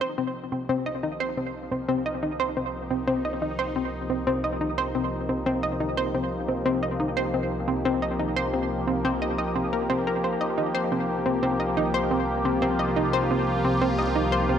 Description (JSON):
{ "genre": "ambient, sequencer-driven space music", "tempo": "88 BPM", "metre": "4/4", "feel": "straight", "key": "C minor", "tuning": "A4 = 440 Hz", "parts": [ { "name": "sweeping resonant pad", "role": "sustained chords", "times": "0.0-14.6 s", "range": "F3 to G4", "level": "-28 LUFS", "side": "left 1 dB", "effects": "chorus" }, { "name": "analog pluck", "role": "riff", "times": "0.0-14.6 s", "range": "C4 to Eb5", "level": "-26 LUFS", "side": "equal", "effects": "chorus, analog delay" }, { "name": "fat analog bass", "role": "bass", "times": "0.0-14.6 s", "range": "C2", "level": "-35 LUFS", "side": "equal", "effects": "none" } ], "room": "wet plate reverb, RT60 2.9 s", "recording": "none", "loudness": "-23 LUFS", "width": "side -8 dB against mid", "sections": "0.0-14.6 A section", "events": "fade-in on analog synth pad 0.0-14.6; fade-in on analog synth bass 0.0-14.6", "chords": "0.0 Cm", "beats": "0.18 0.86 1.54 | 2.23 2.91 3.59 4.27 | 4.95 5.63 6.32 7.00 | 7.68 8.36 9.04 9.72 | 10.41 11.09 11.77 12.45 | 13.13 13.82 14.50" }